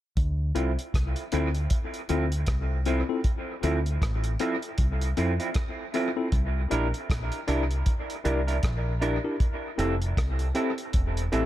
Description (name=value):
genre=lovers rock reggae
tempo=78 BPM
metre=4/4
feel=swing 59% on 16ths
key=D minor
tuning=A4 = 440 Hz
part: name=deep dub fingered electric bass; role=bass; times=0.2-11.5 s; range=E1 to F2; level=-27 LUFS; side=equal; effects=none
part: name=cloth-damped thuddy drum kit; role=drums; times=0.2-11.5 s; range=hi-hat, kick drum, rim click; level=-29 LUFS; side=equal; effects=dub echo
part: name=mellow tine electric piano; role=accompaniment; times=0.5-11.5 s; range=C4 to Bb4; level=-31 LUFS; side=left 3 dB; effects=medium stereo tremolo, dub echo
part: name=electric guitar through a small old amp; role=stabs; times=0.6-11.5 s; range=F3 to Bb4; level=-32 LUFS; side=right 4 dB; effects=lush chorus, dub echo
room=small room ambience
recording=none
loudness=-25 LUFS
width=side -13 dB against mid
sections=0.2-11.5 A section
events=none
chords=0.2 Dm9; 6.3 C9; 9.4 Fmaj7